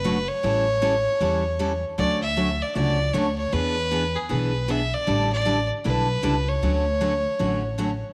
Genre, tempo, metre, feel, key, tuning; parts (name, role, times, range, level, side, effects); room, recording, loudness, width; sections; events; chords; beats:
country, western swing; 155 BPM; 4/4; swing 63% on 8ths; D major; A4 = 440 Hz
clear fiddle; melody; 0.0-8.0 s; G#4 to E5; -27 LUFS; equal
picked steel-string acoustic guitar; accompaniment; 0.0-7.9 s; B2 to A4; -29 LUFS; equal
upright bass; bass; 0.0-8.0 s; F#1 to E2; -29 LUFS; equal
moderate echo chamber reverb, RT60 2.3 s; -23 LUFS; mono
0.0-8.1 A section
0.4 A7; 2.0 Dmaj7; 3.5 E7; 5.1 A7sus4; 6.6 Dmaj7
0.05 | 0.44 0.82 1.21 1.60 | 1.98 2.37 2.76 3.14 | 3.53 3.91 4.30 4.69 | 5.07 5.46 5.85 6.23 | 6.62 7.01 7.39 7.78